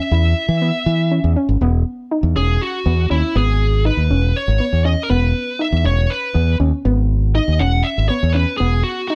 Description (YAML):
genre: progressive instrumental, progressive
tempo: 240 BPM (eighths)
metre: 7/8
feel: straight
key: E major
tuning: A4 = 441 Hz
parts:
  - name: smooth overdriven lead guitar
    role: melody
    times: 0.0-9.2 s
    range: E4 to F#5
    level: -24 LUFS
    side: equal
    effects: none
  - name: soft round pluck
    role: arpeggios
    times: 0.0-9.2 s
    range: B3 to E4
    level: -25 LUFS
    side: equal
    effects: chorus
  - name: modern bright fingered electric bass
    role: bass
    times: 0.1-8.8 s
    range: E1 to E3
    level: -18 LUFS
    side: equal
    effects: none
room: light reverb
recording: dark, warm production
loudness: -17 LUFS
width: mono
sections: 0.0-1.6 A section; 1.6-9.2 B section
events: lead electric guitar solo 1.6-9.2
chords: 0.0 C#m7; 1.6 Emaj7; 8.6 Emaj9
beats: 0.12 0.37 0.62 0.87 1.11 1.36 | 1.61 1.86 2.11 2.36 2.61 2.86 3.11 | 3.36 3.61 3.86 4.11 4.36 4.61 4.86 | 5.11 5.36 5.61 5.85 6.10 6.35 6.60 | 6.85 7.10 7.35 7.60 7.85 8.10 8.35 | 8.60 8.85 9.10